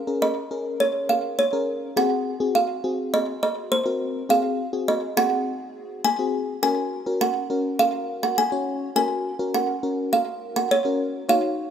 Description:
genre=pop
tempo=103 BPM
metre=4/4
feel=straight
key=unclear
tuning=A4 = 440 Hz
part: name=kalimba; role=melody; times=0.0-11.7 s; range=C5 to Ab5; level=-23 LUFS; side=right 2 dB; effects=slapback echo
part: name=FM electric piano with soft pad layer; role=accompaniment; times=0.1-11.7 s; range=C4 to Db5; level=-26 LUFS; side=left 3 dB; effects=chorus, tremolo
room=light reverb, studio ambience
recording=rough home demo mix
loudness=-21 LUFS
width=side -8 dB against mid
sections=0.0-11.7 A section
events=none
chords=0.0 Bbm7; 2.0 Ab7; 6.6 Gb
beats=0.22 0.80 1.38 | 1.97 2.55 3.13 3.71 | 4.30 4.88 5.46 6.04 | 6.63 7.21 7.79 8.37 | 8.96 9.54 10.12 10.70 | 11.29

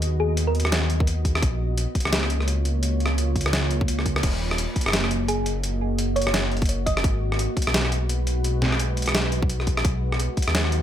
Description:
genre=half-time drum and bass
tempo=171 BPM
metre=4/4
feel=swing 59% on 16ths, half-time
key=Eb minor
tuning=A4 = 442 Hz
part: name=deep dark ambient pad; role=sustained chords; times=0.0-10.8 s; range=Ab3 to D#5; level=-30 LUFS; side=right 1 dB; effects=chorus, built-in reverb, sidechain pumping
part: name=dark detuned saw bass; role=bass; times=0.0-10.8 s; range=Eb1 to D#2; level=-24 LUFS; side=equal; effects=none
part: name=boom bap sampler-style drum kit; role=drums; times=0.0-10.8 s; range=crash cymbal, hi-hat, rim click, snare drum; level=-25 LUFS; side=equal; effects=none
part: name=thumb-piano-like synth pluck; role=melody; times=0.2-1.0, 5.3-7.1 s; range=Ab4 to Eb5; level=-29 LUFS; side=right 1 dB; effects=chorus, phaser, tape echo
part: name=electronic kick drum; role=drums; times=1.0-10.5 s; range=none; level=-24 LUFS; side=equal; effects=none
room=little or no reverb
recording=none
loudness=-21 LUFS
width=side -10 dB against mid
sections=0.0-4.2 A section; 4.2-10.8 A section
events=drop 0.0-4.2, 4.2-10.8; band accent 4.1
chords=0.0 B; 1.4 Bbm; 4.2 Ebm; 7.0 Abm7; 9.8 B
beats=| 0.02 0.37 0.72 1.07 | 1.43 1.78 2.13 2.48 | 2.83 3.18 3.53 3.88 | 4.23 4.58 4.93 5.29 | 5.64 5.99 6.34 6.69 | 7.04 7.39 7.74 8.09 | 8.44 8.79 9.14 9.50 | 9.85 10.20 10.55

